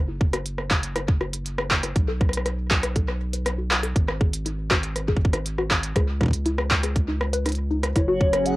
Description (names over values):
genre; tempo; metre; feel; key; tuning
IDM; 120 BPM; 4/4; straight; unclear; A4 = 442 Hz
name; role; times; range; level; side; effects
round analog bass; bass; 0.0-8.6 s; F#1 to C#2; -28 LUFS; equal; none
warbly dusty pluck; arpeggios; 0.1-8.2 s; D#4 to B4; -28 LUFS; left 2 dB; chorus, analog delay
electronic kick drum; drums; 0.2-8.3 s; none; -21 LUFS; equal; overdrive, cassette tape
glitchy drum kit; drums; 0.3-8.6 s; handclaps, hi-hat, rim click; -25 LUFS; equal; overdrive, cassette tape, tape echo
warbly nostalgic lead; melody; 8.0-8.6 s; C#5 to F#5; -23 LUFS; left 1 dB; chorus, cassette tape
warbly tape-like pad; sustained chords; 8.0-8.6 s; F#3 to G#4; -26 LUFS; right 1 dB; chorus, built-in reverb, sidechain pumping
twinkling granular texture; texture; 8.1-8.6 s; F#4; -35 LUFS; right 3 dB; built-in reverb
room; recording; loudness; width
moderate booth ambience, RT60 0.2 s; home recording on cassette; -21 LUFS; side -18 dB against mid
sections
0.0-8.6 A section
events
none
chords
0.0 N.C.; 2.0 B5; 4.0 G#5; 6.0 C#sus2; 8.0 F#sus2